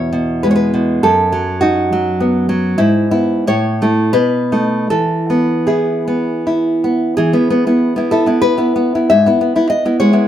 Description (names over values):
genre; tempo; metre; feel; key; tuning
romantic piece for solo classical guitar; 76-105 BPM; 3/4; rubato; E major; A4 = 440 Hz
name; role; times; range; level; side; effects
nylon-string guitar; solo; 0.0-10.3 s; E2 to E5; -12 LUFS; equal; none
room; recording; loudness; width
moderate studio reverb, RT60 0.8 s; band playing live in one room; -12 LUFS; side -10 dB against mid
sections
0.0-7.2 A section; 7.2-10.3 B section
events
none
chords
0.0 E; 1.0 B7/F#; 2.8 E/G#; 3.5 A; 4.2 B7; 4.9 E; 9.1 E/G#